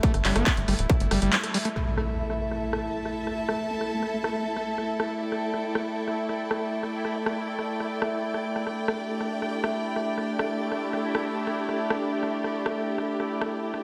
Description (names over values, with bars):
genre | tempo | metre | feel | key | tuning
psychedelic trance | 139 BPM | 4/4 | straight | unclear | A4 = 440 Hz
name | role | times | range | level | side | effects
bubbling stepped-filter texture | sustained chords | 0.0-13.8 s | A3 to E4 | -33 LUFS | equal | chorus, built-in reverb, sidechain pumping
screaming distorted acid line | riff | 0.0-1.7 s | G3 to B3 | -32 LUFS | equal | distortion, chorus, sidechain pumping, digital delay
electronic kick drum | drums | 0.0-1.0 s | none | -26 LUFS | equal | distortion
techno drum kit | drums | 0.0-13.8 s | crash cymbal, handclaps, hi-hat, rim click | -33 LUFS | equal | low-pass filter on hats, low-pass filter on snare, low-pass filter on cymbals, low-pass filter on room
tight sequencer bass | bass | 0.1-1.3 s | D1 to G1 | -28 LUFS | equal | tube saturation
impact | sound effects | 1.8-3.5 s | none | -36 LUFS | equal | none
warm studio string section | texture | 1.8-13.8 s | D4 to A5 | -34 LUFS | equal | sidechain pumping
room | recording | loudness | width
moderate lush hall reverb, RT60 1.8 s, digital ambience | none | -28 LUFS | mono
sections
0.0-1.8 A section; 1.8-13.8 B section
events
drop 0.0-1.8; kick drops out 1.3-1.8; band accent 1.3; impact 1.8-3.5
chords
0.0 G5; 1.8 A5